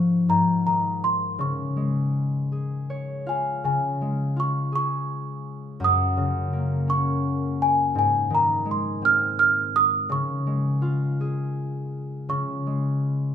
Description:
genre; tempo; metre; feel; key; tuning
children's music, lullaby; 55 BPM (dotted quarters); 6/8; rubato; Db major; A4 = 440 Hz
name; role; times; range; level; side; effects
small celesta; melody; 0.0-13.3 s; Ab5 to F6; -22 LUFS; right 1 dB; none
concert harp; accompaniment; 0.0-13.3 s; Gb2 to F5; -25 LUFS; left 2 dB; none
room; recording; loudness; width
wet recital hall reverb, RT60 1.5 s; minimal, uncompressed stereo recording; -21 LUFS; side -8 dB against mid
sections
0.0-3.6 A section; 3.6-12.3 B section; 12.3-13.3 A section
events
harp fill 2.5-3.6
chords
0.3 Ab5; 1.4 Db; 5.8 Gb; 7.9 Ab; 10.1 Db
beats
0.28 | 1.39 2.51 | 3.63 4.73 | 5.81 6.88 | 7.95 9.02 | 10.09 11.18 | 12.29

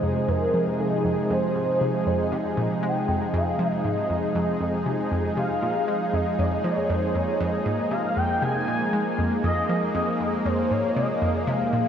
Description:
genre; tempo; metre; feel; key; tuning
ambient, sequencer-driven space music; 118 BPM; 4/4; straight; F minor; A4 = 440 Hz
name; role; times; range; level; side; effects
expressive synth lead; melody; 0.0-11.9 s; Ab4 to Ab5; -27 LUFS; equal; ensemble chorus, tape echo
lush unison pad; sustained chords; 0.0-11.9 s; C3 to Ab4; -25 LUFS; equal; chorus
analog pluck; riff; 0.0-11.8 s; F2 to Ab3; -28 LUFS; equal; chorus, cassette tape, tape echo
room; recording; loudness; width
wet lush hall reverb, RT60 2.7 s; dreamy mix soaked in reverb; -22 LUFS; side -8 dB against mid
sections
0.0-11.9 A section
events
none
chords
0.0 Fm7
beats
0.29 0.79 | 1.30 1.81 2.32 2.83 | 3.34 3.85 4.35 4.86 | 5.37 5.88 6.39 6.90 | 7.40 7.91 8.42 8.93 | 9.44 9.95 10.46 10.96 | 11.47

